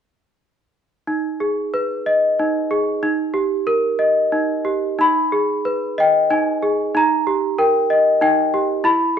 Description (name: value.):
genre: children's music.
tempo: 93 BPM.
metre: 3/4.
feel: rubato.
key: G# harmonic minor.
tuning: A4 = 440 Hz.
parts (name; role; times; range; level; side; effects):
worn celesta; solo; 1.1-9.2 s; D#4 to B5; -16 LUFS; equal; none.
room: moderate large studio reverb, RT60 1.1 s.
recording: band playing live in one room.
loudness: -16 LUFS.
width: side -8 dB against mid.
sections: 1.1-5.0 A section; 5.0-9.2 B section.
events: none.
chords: 1.1 G#m; 3.0 D#; 5.0 G#m; 6.9 D#.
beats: | 1.07 1.73 2.39 | 3.03 3.67 4.32 | 4.98 5.65 6.30 | 6.95 7.59 8.21 | 8.85.